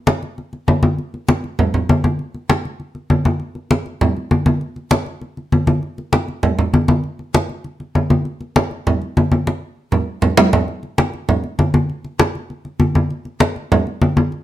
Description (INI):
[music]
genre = latin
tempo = 198 BPM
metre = 4/4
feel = straight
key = none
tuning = none
[part]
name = congas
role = percussion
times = 0.1-14.4 s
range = none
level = -15 LUFS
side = equal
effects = none
[sound]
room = moderate studio reverb, RT60 0.7 s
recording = none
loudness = -16 LUFS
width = side -13 dB against mid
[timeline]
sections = 1.0-10.7 A section; 10.7-14.4 B section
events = drum fill 9.5-10.7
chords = none